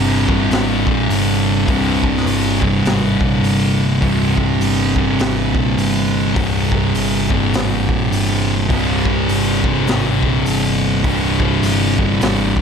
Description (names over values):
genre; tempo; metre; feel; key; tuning
stoner and doom metal; 103 BPM; 4/4; swing 61% on 8ths; unclear; A4 = 440 Hz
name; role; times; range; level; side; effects
thick fuzz guitar; riff; 0.0-12.6 s; C2 to C3; -19 LUFS; left 11 dB; distortion
thick fuzz guitar; riff; 0.0-12.6 s; C2 to C3; -19 LUFS; right 10 dB; distortion
overdriven picked electric bass; bass; 0.0-12.6 s; C1 to Bb1; -21 LUFS; equal; tube saturation
raw garage drum kit; drums; 0.3-12.6 s; hi-hat, kick drum, snare drum; -22 LUFS; equal; none
room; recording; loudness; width
light reverb; none; -14 LUFS; side -6 dB against mid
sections
0.0-12.6 A section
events
none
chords
0.0 C5